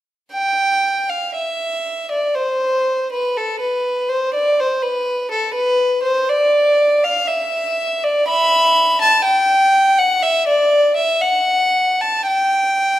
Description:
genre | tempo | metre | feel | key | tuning
classical, baroque-style suite movement for unaccompanied violin | 60 BPM | 4/4 | rubato | G major from 8.3 s | A4 = 441 Hz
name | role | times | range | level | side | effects
rich violin | solo | 0.3-13.0 s | A4 to B5 | -14 LUFS | equal | none
room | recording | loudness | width
moderate recital hall reverb, RT60 1.5 s | none | -14 LUFS | side -14 dB against mid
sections
0.3-13.0 A section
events
none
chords
none

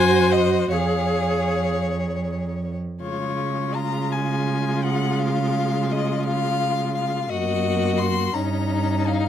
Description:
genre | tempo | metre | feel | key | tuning
classical, slow romantic movement for string quartet | 50-58 BPM (dotted quarters) | 6/8 | rubato | Db major | A4 = 440 Hz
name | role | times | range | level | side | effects
warm violin | melody | 0.0-9.3 s | Db5 to C6 | -26 LUFS | left 6 dB | none
rich violin | second line | 0.0-9.3 s | Eb4 to Db5 | -27 LUFS | left 4 dB | none
rich viola | accompaniment | 0.0-9.3 s | Ab3 to Ab4 | -26 LUFS | right 1 dB | none
warm cello | bass | 0.0-9.3 s | F2 to Db3 | -24 LUFS | right 3 dB | none
room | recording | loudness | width
light reverb | none | -20 LUFS | side -10 dB against mid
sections
0.0-3.0 A section; 3.0-9.3 B section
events
none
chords
0.0 Ab7/Gb; 0.7 Db/F; 3.0 Db; 7.3 Ebm/Gb; 8.3 Eb7/G

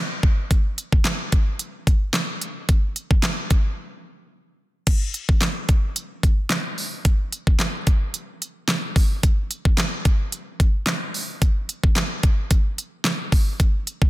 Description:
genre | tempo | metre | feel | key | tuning
pop | 110 BPM | 4/4 | straight | none | none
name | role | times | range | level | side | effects
pop drum kit | drums | 0.2-14.1 s | crash cymbal, handclaps, hi-hat, kick drum, snare drum | -19 LUFS | equal | none
room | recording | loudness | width
light reverb | dense, heavily limited modern master | -19 LUFS | side -18 dB against mid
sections
0.0-4.9 A section; 4.9-14.1 B section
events
break 3.8-4.9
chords
none

